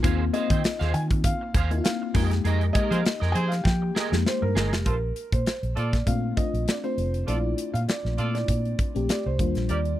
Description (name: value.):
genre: polished 1980s jazz-funk pop.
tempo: 99 BPM.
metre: 4/4.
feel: swing 54% on 16ths.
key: Bb major from 4.9 s.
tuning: A4 = 440 Hz.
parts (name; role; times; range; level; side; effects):
FM electric piano with soft pad layer; accompaniment; 0.0-10.0 s; G3 to G4; -30 LUFS; left 5 dB; analog chorus.
electric guitar at the edge of break-up; riff; 0.0-4.8 s; Ab4 to G5; -32 LUFS; right 7 dB; ensemble chorus.
vintage muted fingered electric bass; bass; 0.0-9.9 s; F1 to F3; -26 LUFS; equal; none.
modern studio drum kit; drums; 0.0-10.0 s; hi-hat, kick drum, snare drum; -26 LUFS; equal; none.
felt-muted upright piano; melody; 0.3-10.0 s; Bb4 to Ab5; -32 LUFS; right 1 dB; slapback echo.
mellow horn section; second line; 2.9-9.8 s; C4 to D5; -32 LUFS; right 3 dB; none.
room: little or no reverb.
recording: dry, close 1970s-style studio recording.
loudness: -22 LUFS.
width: side -14 dB against mid.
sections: 0.0-4.9 A section; 4.9-10.0 B section.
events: band accent 2.4-4.9; drum fill 3.7-4.9.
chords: 0.0 Ab6/Eb; 2.1 Fm11; 4.9 Bbmaj9; 9.4 Ebmaj9.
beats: | 0.04 0.64 1.24 1.84 | 2.45 3.05 3.65 4.26 | 4.86 5.46 6.07 6.67 | 7.28 7.88 8.49 9.09 | 9.70.